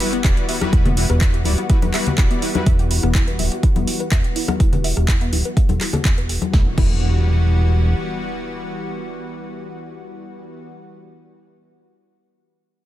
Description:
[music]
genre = progressive house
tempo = 124 BPM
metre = 4/4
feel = straight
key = E minor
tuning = A4 = 436 Hz
[part]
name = lush unison pad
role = sustained chords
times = 0.0-10.7 s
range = E3 to F#4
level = -28 LUFS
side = left 1 dB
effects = chorus, sidechain pumping
[part]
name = analog pluck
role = arpeggios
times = 0.0-6.9 s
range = B3 to E5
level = -28 LUFS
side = left 1 dB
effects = chorus, sidechain pumping, digital delay
[part]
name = soft supersaw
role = stabs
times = 0.0-2.6 s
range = G3 to D5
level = -27 LUFS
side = left 3 dB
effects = sidechain pumping, digital delay
[part]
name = deep house drum kit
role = drums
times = 0.0-6.9 s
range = crash cymbal, handclaps, hi-hat, rim click, snare drum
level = -26 LUFS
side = right 1 dB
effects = overdrive
[part]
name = sub drop and impact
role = sound effects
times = 0.1-0.7, 6.5-10.7 s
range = none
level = -29 LUFS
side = right 1 dB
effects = none
[part]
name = fat analog bass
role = bass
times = 0.2-7.9 s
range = D1 to E1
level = -19 LUFS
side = equal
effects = tube saturation, sidechain pumping
[part]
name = electronic kick drum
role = drums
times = 0.2-6.9 s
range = none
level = -17 LUFS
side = equal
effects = overdrive
[part]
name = congas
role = percussion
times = 0.6-6.5 s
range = none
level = -25 LUFS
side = left 4 dB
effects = sidechain pumping on perc
[sound]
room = little or no reverb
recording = none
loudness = -16 LUFS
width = side -14 dB against mid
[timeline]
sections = 0.0-6.5 A section; 6.5-10.4 B section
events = impact 0.0-0.7; filter sweep on analog synth bass 0.0-6.5; filter sweep on synth pluck 0.0-6.5; filter sweep on analog synth pad 0.0-6.5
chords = 0.0 Emadd9

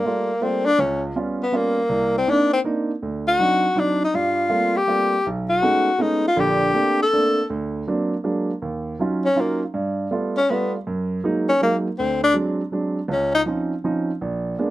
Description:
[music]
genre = jazz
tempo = 161 BPM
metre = 3/4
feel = swing 66% on 8ths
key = G minor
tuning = A4 = 440 Hz
[part]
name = breathy tenor saxophone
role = melody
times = 0.0-13.4 s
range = Bb3 to A4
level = -19 LUFS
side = left 2 dB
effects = none
[part]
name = warm concert grand piano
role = accompaniment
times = 0.0-14.7 s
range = Bb1 to F4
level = -23 LUFS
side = right 2 dB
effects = none
[sound]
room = little or no reverb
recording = close, detailed microphones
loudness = -19 LUFS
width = side -15 dB against mid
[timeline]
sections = 0.0-8.6 A section; 8.6-14.7 B section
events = none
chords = 0.0 Gm9; 0.8 C#7#11; 1.9 Cm9; 3.0 D7b9; 4.1 Gm11; 5.3 B13; 6.4 Bbmaj9; 7.5 D7b13; 8.2 Bbaug7; 8.6 Ebm9; 9.7 G9; 10.9 Gb69; 12.0 D7#11; 13.1 Dbmaj9

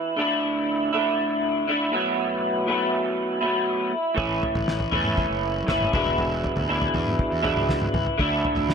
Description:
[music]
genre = psychedelic rock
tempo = 120 BPM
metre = 4/4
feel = straight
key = E mixolydian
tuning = A4 = 440 Hz
[part]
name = electric guitar through a small old amp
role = riff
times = 0.0-8.7 s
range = E2 to E4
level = -22 LUFS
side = equal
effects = rotary speaker
[part]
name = fuzz fingered electric bass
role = bass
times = 4.2-8.7 s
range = E1 to E2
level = -30 LUFS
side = equal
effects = overdrive
[part]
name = cloth-damped thuddy drum kit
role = drums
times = 4.2-8.7 s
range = kick drum, snare drum, toms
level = -28 LUFS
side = equal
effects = none
[sound]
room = light reverb, small room ambience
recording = none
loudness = -21 LUFS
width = side -6 dB against mid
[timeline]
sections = 0.0-8.7 A section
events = none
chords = 0.2 Dsus2; 1.9 B7sus4; 4.2 A; 5.9 E7; 8.2 Dsus2

